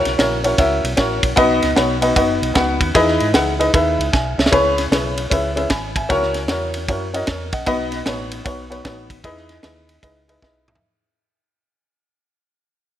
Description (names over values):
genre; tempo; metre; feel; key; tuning
uptempo gospel; 153 BPM; 4/4; swing 65% on 8ths; E major; A4 = 445 Hz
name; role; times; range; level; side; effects
warm upright piano; accompaniment; 0.0-10.8 s; B2 to B5; -18 LUFS; left 1 dB; none
hollow-body short-scale fingered electric bass; bass; 0.1-10.8 s; F#1 to G#2; -26 LUFS; right 1 dB; none
tight funk drum kit; drums; 0.1-10.8 s; kick drum, ride cymbal, snare drum, toms; -21 LUFS; right 1 dB; none
room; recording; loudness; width
light reverb, small room ambience; none; -15 LUFS; side -11 dB against mid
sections
0.0-4.5 A section; 4.5-10.8 B section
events
drum fill 4.1-4.5, 10.4-10.8; fade-out 4.5-10.8; upright piano fill 10.2-10.8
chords
0.0 F#7; 1.4 B; 2.9 Emaj7; 4.5 C#m7; 6.1 F#7/C#; 7.7 B; 9.2 Emaj7